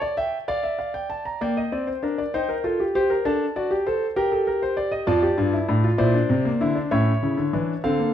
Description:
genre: classical, baroque-style 4-part fugue for grand piano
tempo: 65 BPM (dotted quarters)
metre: 6/8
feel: straight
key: G minor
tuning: A4 = 440 Hz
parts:
  - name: warm concert grand piano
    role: solo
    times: 0.0-8.1 s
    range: F2 to Bb5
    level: -20 LUFS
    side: equal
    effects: none
room: wet stone room reverb, RT60 1.4 s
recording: dark, warm production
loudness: -20 LUFS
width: side -10 dB against mid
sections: 0.0-1.4 A section; 1.4-8.1 B section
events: none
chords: 0.5 Dm; 1.4 Gm/Bb; 2.3 Cm/Eb; 3.3 D; 4.2 Gm; 5.1 Dm/F; 6.0 Bbadd9; 6.9 A

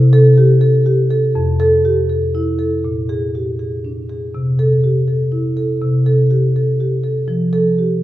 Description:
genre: classical, contemporary piece for solo marimba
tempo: 81 BPM (dotted quarters)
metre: 6/8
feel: straight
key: unclear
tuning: A4 = 435 Hz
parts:
  - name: marimba with soft mallets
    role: solo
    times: 0.0-8.0 s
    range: F2 to A4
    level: -13 LUFS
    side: equal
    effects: none
room: wet recital hall reverb, RT60 1.4 s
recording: heard from further back in the room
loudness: -13 LUFS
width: side -14 dB against mid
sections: 0.0-8.0 A section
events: none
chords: 0.0 Am7/C; 1.3 Fmaj7; 2.8 Bb7; 4.3 C6; 5.8 Am7/C; 7.3 F

